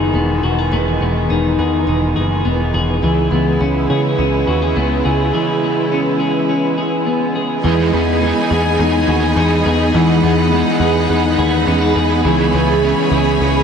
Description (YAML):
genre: dream pop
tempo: 104 BPM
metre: 4/4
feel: straight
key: E major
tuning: A4 = 440 Hz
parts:
  - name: clear symphonic string section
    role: sustained chords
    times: 0.0-13.6 s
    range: C#3 to B5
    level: -18 LUFS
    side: right 2 dB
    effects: none
  - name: clean electric guitar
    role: arpeggios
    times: 0.0-13.6 s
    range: E3 to G#4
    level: -17 LUFS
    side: left 2 dB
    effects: lush chorus, ping-pong delay
  - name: picked electric bass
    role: bass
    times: 0.0-13.6 s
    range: E1 to C#3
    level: -18 LUFS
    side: equal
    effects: none
  - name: crunchy overdriven guitar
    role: accompaniment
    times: 7.6-13.6 s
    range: C#3 to G#4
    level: -20 LUFS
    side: right 4 dB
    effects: harmonic tremolo, lush chorus
room: wet cathedral reverb, RT60 5.6 s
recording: dreamy mix soaked in reverb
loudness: -13 LUFS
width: side -7 dB against mid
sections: 0.0-7.6 A section; 7.6-13.6 B section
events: none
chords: 0.0 Emaj7; 3.0 C#m7; 7.6 Emaj7; 12.3 C#m7